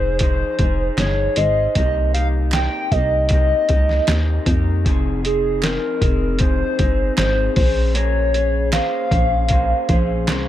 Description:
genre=indie pop, bedroom pop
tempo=77 BPM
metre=4/4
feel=straight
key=F minor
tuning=A4 = 439 Hz
part: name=hollow clarinet-like synth lead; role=melody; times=0.0-10.5 s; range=Ab4 to G5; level=-21 LUFS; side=left 1 dB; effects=wide subtle chorus
part: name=electric guitar through a small old amp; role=accompaniment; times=0.0-10.5 s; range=C3 to C5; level=-25 LUFS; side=left 1 dB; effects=wide subtle chorus, warbly pitch drift
part: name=plucky analog bass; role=bass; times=0.0-10.5 s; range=F1 to F2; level=-20 LUFS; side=equal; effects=none
part: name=lo-fi sampler-style drum kit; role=drums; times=0.2-10.5 s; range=hi-hat, kick drum, snare drum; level=-20 LUFS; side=equal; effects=none
part: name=group handclap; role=percussion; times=1.0-10.5 s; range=none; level=-31 LUFS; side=right 7 dB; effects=none
room=light reverb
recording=none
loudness=-16 LUFS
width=side -12 dB against mid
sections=0.0-10.5 A section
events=none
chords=0.0 Fm7; 1.8 Cm7; 4.9 Fm7; 7.6 Bbm9

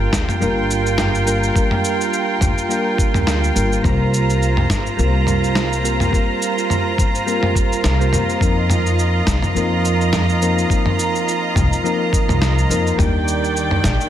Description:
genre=sunset chillout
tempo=105 BPM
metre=4/4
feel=swing 56% on 16ths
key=unclear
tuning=A4 = 440 Hz
part: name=soft electric-piano-like synth keys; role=accompaniment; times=0.0-14.1 s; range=F3 to Bb4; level=-21 LUFS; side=moving between left 3 dB and right 7 dB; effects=chorus, auto-pan, low-pass filter, tape echo
part: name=clear studio string section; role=sustained chords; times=0.0-14.1 s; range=Eb3 to Bb5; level=-21 LUFS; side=right 1 dB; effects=none
part: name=upright bass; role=bass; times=0.0-13.9 s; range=G1 to F2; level=-19 LUFS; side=equal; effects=none
part: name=dusty soul sampler-style drum kit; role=drums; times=0.1-14.1 s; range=shaker, snare drum, toms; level=-22 LUFS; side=equal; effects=none
part: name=electronic kick drum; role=drums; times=0.1-14.0 s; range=none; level=-19 LUFS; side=equal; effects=none
room=light reverb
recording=none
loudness=-15 LUFS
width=side -11 dB against mid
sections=0.0-14.1 A section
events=none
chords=0.0 Gm7; 3.8 C7sus4; 8.4 F7sus4; 13.0 Ebmaj7

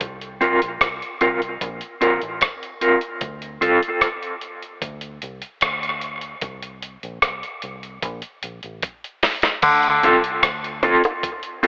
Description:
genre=dub reggae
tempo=75 BPM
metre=4/4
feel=straight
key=D minor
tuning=A4 = 440 Hz
part: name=vintage muted fingered electric bass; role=bass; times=0.0-11.7 s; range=A1 to D2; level=-36 LUFS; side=equal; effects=none
part: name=dusty soul sampler-style drum kit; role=drums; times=0.0-11.7 s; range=crash cymbal, hi-hat, kick drum, rim click, snare drum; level=-22 LUFS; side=equal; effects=tape echo
part: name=mellow electric guitar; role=accompaniment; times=0.4-3.8, 10.0-11.7 s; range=C4 to Bb4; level=-19 LUFS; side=equal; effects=tremolo, tape echo
part: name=clav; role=riff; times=9.6-9.9 s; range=D3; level=-18 LUFS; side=left 1 dB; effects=tape echo
part: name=bongos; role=percussion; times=10.0-11.2 s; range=none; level=-26 LUFS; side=equal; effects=tape echo
room=moderate plate reverb, RT60 3.3 s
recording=telephone sound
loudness=-18 LUFS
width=side -26 dB against mid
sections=0.0-9.6 A section; 9.6-11.7 B section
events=break 3.2-9.6; drum fill 8.8-9.6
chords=0.0 C7sus4; 3.2 D7(no3); 6.4 N.C.; 9.6 Dm7

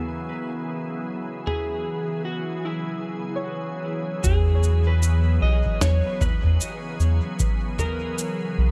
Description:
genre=ambient dub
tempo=76 BPM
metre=4/4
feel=swing 59% on 16ths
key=unclear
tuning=A4 = 439 Hz
part: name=soft additive organ-like pad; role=sustained chords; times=0.0-8.7 s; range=C#3 to G#4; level=-33 LUFS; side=equal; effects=ensemble chorus, built-in reverb
part: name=Celtic harp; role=arpeggios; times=0.0-7.0 s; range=B3 to C#5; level=-38 LUFS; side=equal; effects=dub echo
part: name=drifting glass-harmonics texture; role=texture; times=0.0-4.3 s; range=E3 to E6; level=-41 LUFS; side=equal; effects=chorus, built-in reverb
part: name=electric slide guitar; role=melody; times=1.5-8.7 s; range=E4 to D#5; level=-34 LUFS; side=equal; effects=dub echo
part: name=lo-fi sampler-style drum kit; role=drums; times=1.5-8.4 s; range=shaker, snare drum, toms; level=-31 LUFS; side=equal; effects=none
part: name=soft dub sub bass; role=bass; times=4.2-8.7 s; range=B1 to E2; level=-21 LUFS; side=equal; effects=tube saturation
part: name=electronic kick drum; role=drums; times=4.2-7.6 s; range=none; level=-28 LUFS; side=equal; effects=none
room=light reverb, digital ambience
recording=none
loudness=-24 LUFS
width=mono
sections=0.0-4.2 A section; 4.2-8.7 B section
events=none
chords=0.0 C#m7; 4.2 E

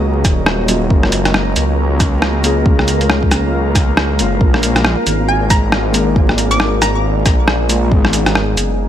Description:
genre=future garage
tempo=137 BPM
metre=4/4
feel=swing 60% on 16ths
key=unclear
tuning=A4 = 443 Hz
part: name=muted felt-like synth keys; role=accompaniment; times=0.0-8.9 s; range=Gb3 to Bb4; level=-21 LUFS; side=left 2 dB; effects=chorus, sidechain pumping, tape echo
part: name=deep dark ambient pad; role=sustained chords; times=0.0-8.9 s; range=Gb3 to Bb5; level=-22 LUFS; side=right 1 dB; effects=chorus, built-in reverb, sidechain pumping
part: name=swelling detuned saw bass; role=bass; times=0.0-8.9 s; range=Eb1 to Db2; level=-16 LUFS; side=equal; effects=none
part: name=flickering grainy texture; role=texture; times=0.0-8.9 s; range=Bb3 to Bb4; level=-25 LUFS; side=right 2 dB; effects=built-in reverb
part: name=electronic kick drum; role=drums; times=0.2-8.0 s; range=none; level=-14 LUFS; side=equal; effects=studio ambience
part: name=lo-fi sampler-style drum kit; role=drums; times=0.2-8.7 s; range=cabasa, hi-hat, rim click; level=-17 LUFS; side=equal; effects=overdrive, studio ambience
part: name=hollow square pluck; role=melody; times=5.3-7.3 s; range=Ab5 to D6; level=-21 LUFS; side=equal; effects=chorus, phaser, ping-pong delay
room=light reverb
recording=vinyl crackle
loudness=-11 LUFS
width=side -10 dB against mid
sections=0.0-8.9 A section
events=none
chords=0.0 Ebm7; 0.9 Gbmaj7; 4.4 Bb7; 7.9 Abm

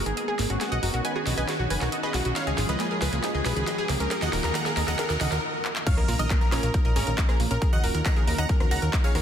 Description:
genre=uplifting trance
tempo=137 BPM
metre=4/4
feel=straight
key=Eb minor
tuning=A4 = 440 Hz
part: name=supersaw stab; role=melody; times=0.0-9.2 s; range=Db4 to Bb5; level=-29 LUFS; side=right 1 dB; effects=sidechain pumping, ping-pong delay
part: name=lush unison pad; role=sustained chords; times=0.0-9.2 s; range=Eb3 to Gb4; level=-34 LUFS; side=left 1 dB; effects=chorus, sidechain pumping
part: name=plucky analog bass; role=bass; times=0.0-9.2 s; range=Eb1 to Bb2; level=-28 LUFS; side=equal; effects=sidechain pumping
part: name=riser and impact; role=sound effects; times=0.0-7.6 s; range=none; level=-35 LUFS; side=equal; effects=none
part: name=analog pluck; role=arpeggios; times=0.1-9.2 s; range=Eb3 to Eb5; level=-34 LUFS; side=right 3 dB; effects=chorus, sidechain pumping, ping-pong delay
part: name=big-room dance drum kit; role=drums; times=0.1-9.2 s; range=crash cymbal, handclaps, hi-hat, rim click, snare drum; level=-32 LUFS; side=equal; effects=overdrive, sidechain pumping on hats, high-pass filter on hats, studio reverb, high-pass filter on snare, sidechain pumping on cymbals, high-pass filter on cymbals
part: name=bright grand piano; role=second line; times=5.9-9.2 s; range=Bb5 to Bb6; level=-36 LUFS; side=right 2 dB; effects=sidechain pumping, ping-pong delay
part: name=electronic kick drum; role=drums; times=5.9-9.0 s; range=none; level=-23 LUFS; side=equal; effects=overdrive, studio reverb
room=light reverb, digital ambience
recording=dense, heavily limited modern master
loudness=-23 LUFS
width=side -9 dB against mid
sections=0.0-5.9 A section; 5.9-9.2 B section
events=build-up 0.0-5.9; drum fill 0.0-5.4, 5.6; riser 0.0-5.4; stop 5.4-5.9; drop 5.9-9.2; impact 5.9-7.6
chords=0.0 Abmadd9; 2.4 Db; 4.1 Ebm7; 5.9 Bbm; 7.6 Ebm7

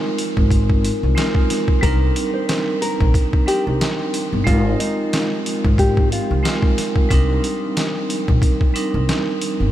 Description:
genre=hip hop, boom-bap hip-hop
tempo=91 BPM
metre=4/4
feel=swing 56% on 16ths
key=C minor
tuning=A4 = 440 Hz
part: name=vibraphone with hard mallets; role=accompaniment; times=0.0-9.7 s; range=G3 to Bb4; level=-22 LUFS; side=right 2 dB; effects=high-pass filter, low-pass filter
part: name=trip hop sampler-style drum kit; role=drums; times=0.2-9.6 s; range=hi-hat, kick drum, snare drum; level=-20 LUFS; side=equal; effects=none
part: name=upright bass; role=bass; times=0.4-9.7 s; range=G1 to C2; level=-19 LUFS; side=equal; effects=none
part: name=nylon-string guitar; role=melody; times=1.8-7.1 s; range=Eb4 to C5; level=-25 LUFS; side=left 1 dB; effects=high-pass filter, low-pass filter, ping-pong delay
room=light reverb, small room ambience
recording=none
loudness=-16 LUFS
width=side -13 dB against mid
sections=0.0-9.7 A section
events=none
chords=0.0 Ab69; 1.8 Cm7; 4.5 Ab69; 7.1 Cm7

